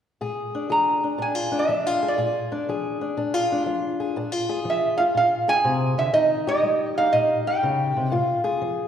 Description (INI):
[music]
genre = acoustic country blues, solo or duo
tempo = 121 BPM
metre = 4/4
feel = swing 68% on 8ths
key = Bb mixolydian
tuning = A4 = 440 Hz
[part]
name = fingerpicked old ladder-braced acoustic guitar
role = accompaniment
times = 0.2-8.9 s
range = Bb2 to Ab4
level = -24 LUFS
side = left 2 dB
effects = none
[part]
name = lap resonator guitar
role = melody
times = 0.7-8.4 s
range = D5 to Bb5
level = -21 LUFS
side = right 2 dB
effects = none
[sound]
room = wet scoring stage reverb, RT60 1.6 s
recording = recorded in a church or concert hall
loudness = -20 LUFS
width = side -8 dB against mid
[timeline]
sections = 0.2-4.2 A section; 4.2-8.9 B section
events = none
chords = 0.2 Bb7; 6.1 Eb7; 8.1 Bb7(no3)